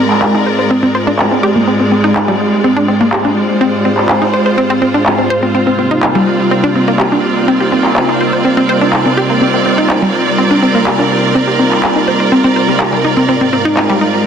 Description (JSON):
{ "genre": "melodic techno", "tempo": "124 BPM", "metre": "4/4", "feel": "straight", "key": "C minor", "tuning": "A4 = 440 Hz", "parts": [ { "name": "lush unison pad", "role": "sustained chords", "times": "0.0-14.3 s", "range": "Ab2 to G4", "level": "-17 LUFS", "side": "equal", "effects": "chorus" }, { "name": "wide unison pluck", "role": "arpeggios", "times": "0.0-14.1 s", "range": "G3 to C5", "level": "-13 LUFS", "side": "equal", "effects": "tape echo" }, { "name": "warm symphonic string section", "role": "texture", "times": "0.0-14.3 s", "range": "Ab3 to D5", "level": "-14 LUFS", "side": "right 2 dB", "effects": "none" }, { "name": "electronic handclaps", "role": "drums", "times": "0.1-13.9 s", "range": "none", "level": "-17 LUFS", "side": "equal", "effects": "low-pass filter on snare, low-pass filter on room" } ], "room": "moderate huge ambient reverb, RT60 4.1 s", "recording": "dense, heavily limited modern master", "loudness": "-9 LUFS", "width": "side -7 dB against mid", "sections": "0.0-14.3 A section", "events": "none", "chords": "0.0 Ab6; 5.5 Cm7; 13.3 Ab6" }